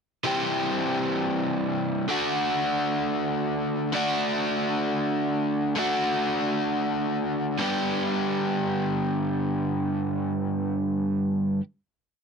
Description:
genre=rock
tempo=free time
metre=none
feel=none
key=G major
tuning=A4 = 440 Hz
part: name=overdriven electric guitar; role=solo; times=0.2-11.6 s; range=G2 to G4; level=-24 LUFS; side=equal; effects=none
room=light reverb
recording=dry, close 1970s-style studio recording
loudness=-24 LUFS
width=side -6 dB against mid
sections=0.3-7.6 pre-chorus; 7.6-11.3 final chord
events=none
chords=0.3 C; 2.1 D; 7.6 G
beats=free time

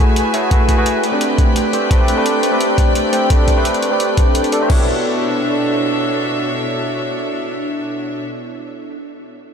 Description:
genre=liquid drum and bass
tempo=172 BPM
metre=4/4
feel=swing 53% on 16ths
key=unclear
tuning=A4 = 440 Hz
part: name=barky tine electric piano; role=accompaniment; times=0.0-9.0 s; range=A3 to C#5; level=-18 LUFS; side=equal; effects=analog chorus, low-pass filter, tape echo
part: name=rich chamber string section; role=sustained chords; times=0.0-8.2 s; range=B2 to G#5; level=-21 LUFS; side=equal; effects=sidechain pumping
part: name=breakbeat sampler-style drum kit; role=drums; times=0.2-4.8 s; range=crash cymbal, hi-hat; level=-26 LUFS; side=left 2 dB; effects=none
part: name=electronic kick drum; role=drums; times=0.5-4.8 s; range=none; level=-14 LUFS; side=equal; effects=none
room=wet huge ambient reverb, RT60 6.9 s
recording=dreamy mix soaked in reverb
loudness=-14 LUFS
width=side -7 dB against mid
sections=0.0-4.7 A section; 4.7-7.5 B section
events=filter sweep on tine electric piano 0.0-4.7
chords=0.0 F#m11; 1.0 Am11; 4.7 Bm11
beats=0.16 | 0.51 0.86 1.21 1.56 | 1.91 2.26 2.60 2.95 | 3.30 3.65 4.00 4.35 | 4.70 5.05 5.40 5.74 | 6.09 6.44 6.79 7.14

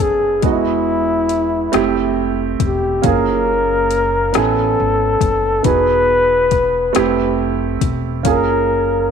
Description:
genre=slow six-eight R&B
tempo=46 BPM (dotted quarters)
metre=6/8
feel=straight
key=unclear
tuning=A4 = 440 Hz
part: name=breathy flugelhorn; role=melody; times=0.0-9.1 s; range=E4 to B4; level=-16 LUFS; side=left 2 dB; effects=slapback echo
part: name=warm concert grand piano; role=accompaniment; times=0.0-9.1 s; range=G#3 to G#5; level=-19 LUFS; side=right 11 dB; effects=none
part: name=upright bass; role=bass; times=0.0-9.1 s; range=E1 to A1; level=-24 LUFS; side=left 1 dB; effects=none
part: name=smooth R&B drum kit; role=drums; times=0.0-8.5 s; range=hi-hat, kick drum, rim click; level=-21 LUFS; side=left 7 dB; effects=none
room=moderate echo chamber reverb, RT60 2.6 s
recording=1960s-style stereo with parts hard left and right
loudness=-14 LUFS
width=side -7 dB against mid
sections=0.0-9.1 A section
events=none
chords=0.4 Emaj9; 1.7 Fmaj9; 3.0 F#maj9; 4.3 Amaj9; 5.6 Emaj9; 6.9 Fmaj9; 8.3 F#maj9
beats=| 0.43 1.73 | 3.03 4.34 | 5.64 6.95 | 8.25

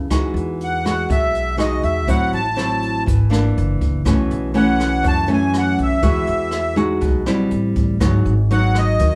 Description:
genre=bossa nova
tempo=121 BPM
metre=4/4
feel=straight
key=E major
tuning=A4 = 441 Hz
part: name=nylon-string guitar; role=accompaniment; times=0.0-9.2 s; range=F#2 to F#4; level=-22 LUFS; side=equal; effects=none
part: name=upright bass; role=bass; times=0.0-9.2 s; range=F#1 to F#2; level=-23 LUFS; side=equal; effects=none
part: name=jazz brush drum kit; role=drums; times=0.1-9.1 s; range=hi-hat, kick drum, rim click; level=-24 LUFS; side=equal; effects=none
part: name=accordion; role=melody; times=0.6-9.2 s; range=D#5 to A5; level=-23 LUFS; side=equal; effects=light tremolo tuning, plate reverb
room=moderate studio ambience, RT60 0.5 s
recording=heard from further back in the room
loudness=-18 LUFS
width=mono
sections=0.0-9.2 A section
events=none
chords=0.1 Emaj9; 2.1 Am6; 3.6 F#aug7; 4.1 B9sus4; 6.0 Emaj9; 7.5 Am7; 8.0 G#m7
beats=| 0.10 0.60 1.09 1.58 | 2.08 2.57 3.07 3.56 | 4.05 4.55 5.04 5.54 | 6.03 6.53 7.02 7.51 | 8.01 8.50 9.00

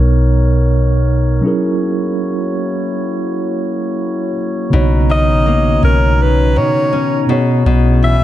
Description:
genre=R&B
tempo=82 BPM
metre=4/4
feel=swing 54% on 16ths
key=B major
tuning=A4 = 441 Hz
part: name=mellow tine electric piano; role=accompaniment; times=0.0-8.2 s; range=B2 to C#5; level=-17 LUFS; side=right 2 dB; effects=medium stereo tremolo
part: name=glass harmonica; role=sustained chords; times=0.0-8.2 s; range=A#3 to A#5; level=-21 LUFS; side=left 1 dB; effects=none
part: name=soft 808-style bass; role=bass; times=0.0-8.2 s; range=A#1 to B2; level=-13 LUFS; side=equal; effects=none
part: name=nylon-string guitar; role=arpeggios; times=4.7-8.2 s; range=B2 to C#4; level=-18 LUFS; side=left 5 dB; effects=none
part: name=clear alto saxophone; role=melody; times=5.1-8.2 s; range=A#4 to E5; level=-17 LUFS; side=equal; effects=none
room=small room ambience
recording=nothing above 10.7 kHz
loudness=-12 LUFS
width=side -13 dB against mid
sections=0.0-4.7 A section; 4.7-8.2 B section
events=break 1.8-4.7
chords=0.0 Bmaj9; 1.4 F#7; 4.7 Bmaj9; 7.3 E6/B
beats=0.34 1.07 | 1.80 2.54 3.27 4.00 | 4.73 5.46 6.20 6.93 | 7.66

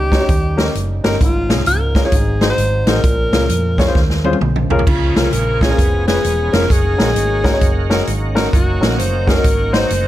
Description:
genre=uptempo gospel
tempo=131 BPM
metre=4/4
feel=swing 63% on 8ths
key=Db major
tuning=A4 = 435 Hz
part: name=clear alto saxophone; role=melody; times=0.0-10.1 s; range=F4 to C5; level=-20 LUFS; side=left 1 dB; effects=none
part: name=warm baby grand piano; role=accompaniment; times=0.0-9.8 s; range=Ab2 to Db5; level=-20 LUFS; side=left 2 dB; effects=none
part: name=mellow French horn section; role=sustained chords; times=0.0-10.1 s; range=F3 to F4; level=-32 LUFS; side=right 2 dB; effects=none
part: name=hollow-body short-scale fingered electric bass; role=bass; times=0.0-10.1 s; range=Fb1 to F2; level=-19 LUFS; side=right 1 dB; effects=none
part: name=swinging big-band drum kit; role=drums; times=0.1-10.0 s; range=crash cymbal, hi-hat, kick drum, snare drum, toms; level=-16 LUFS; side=equal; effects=none
part: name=bright tonewheel organ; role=sustained chords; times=4.9-10.1 s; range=Eb3 to Ab4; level=-25 LUFS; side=right 3 dB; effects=slow rotary speaker, overdrive, chorus vibrato
room=small room ambience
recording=none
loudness=-13 LUFS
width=side -14 dB against mid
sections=0.0-10.1 A section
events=drum fill 4.0-4.9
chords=0.0 Eb7; 1.2 Db/Ab; 2.1 Ab7; 3.0 Bbm7; 4.9 Db6; 5.8 Db7/F; 6.7 Gb6; 8.5 Ebm7/Gb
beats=0.29 0.75 | 1.20 1.66 2.12 2.58 | 3.04 3.49 3.95 4.41 | 4.87 5.32 5.78 6.24 | 6.70 7.16 7.62 8.07 | 8.53 8.99 9.45 9.91

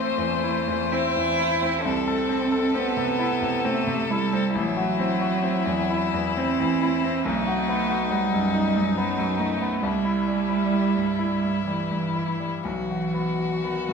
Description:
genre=classical, slow romantic movement for piano trio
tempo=59-70 BPM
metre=3/4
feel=rubato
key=unclear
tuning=A4 = 443 Hz
part: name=clear violin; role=melody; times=0.0-13.9 s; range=D#4 to C5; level=-28 LUFS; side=left 8 dB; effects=none
part: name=rich cello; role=second line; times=0.0-13.9 s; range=D#3 to E4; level=-25 LUFS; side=right 5 dB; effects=none
part: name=bright grand piano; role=accompaniment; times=0.0-13.9 s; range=A1 to A4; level=-27 LUFS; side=left 2 dB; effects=none
room=wet recital hall reverb, RT60 1.4 s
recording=recorded in a church or concert hall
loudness=-22 LUFS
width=side -5 dB against mid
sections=0.0-13.9 A section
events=none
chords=0.0 Am; 1.8 Am/C; 4.5 F#m7b5/A; 7.3 B7; 9.8 C; 12.6 B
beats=0.91 | 1.83 2.73 3.65 | 4.55 5.44 6.37 | 7.26 8.12 8.97 | 9.84 10.73 11.67 | 12.64 13.63

